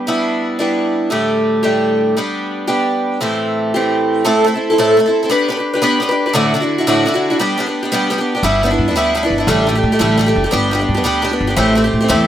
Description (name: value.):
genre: celtic folk, Celtic jig.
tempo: 115 BPM (dotted quarters).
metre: 6/8.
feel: straight.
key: unclear.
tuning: A4 = 439 Hz.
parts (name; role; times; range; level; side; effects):
picked twelve-string acoustic guitar; accompaniment; 0.0-12.3 s; D2 to B4; -13 LUFS; equal; none.
upright bass; bass; 8.4-12.3 s; F#1 to A2; -18 LUFS; equal; none.
room: moderate small room reverb, RT60 0.5 s.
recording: none.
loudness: -13 LUFS.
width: side -10 dB against mid.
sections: 0.0-4.3 A section; 4.3-12.3 A section.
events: none.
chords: 0.1 G6; 1.1 Dsus4/A; 2.2 G; 3.2 Am7; 4.3 Am; 5.3 G/B; 6.3 Dadd9; 7.4 G; 8.4 G6; 9.5 Dsus4/A; 10.5 G; 11.6 Am7.